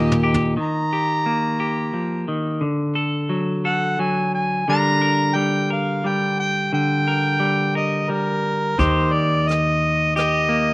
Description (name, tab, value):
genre	acoustic folk-pop ballad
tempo	88 BPM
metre	3/4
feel	straight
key	Eb major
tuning	A4 = 439 Hz
part	mellow harmonica	melody	0.0-10.7 s	Bb4 to Bb5	-21 LUFS	equal	none
part	rich violin	second line	0.0-0.6 s	Eb4 to G4	-35 LUFS	right 1 dB	none
part	clean electric guitar	accompaniment	0.0-10.7 s	Bb2 to Bb4	-20 LUFS	left 1 dB	slapback echo
part	upright bass	bass	0.0-0.5, 8.8-10.7 s	Eb2	-24 LUFS	equal	none
part	vintage brush drum kit	drums	0.1-0.5, 8.8-10.3 s	hi-hat, kick drum, rim click, toms	-26 LUFS	equal	none
room	little or no reverb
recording	recorded outdoors, with no room sound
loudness	-18 LUFS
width	side -23 dB against mid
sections	0.6-8.8 A section; 8.8-10.7 B section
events	drum fill 0.0-0.6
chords	0.0 Eb; 2.6 D; 4.7 Gm/D; 8.8 Eb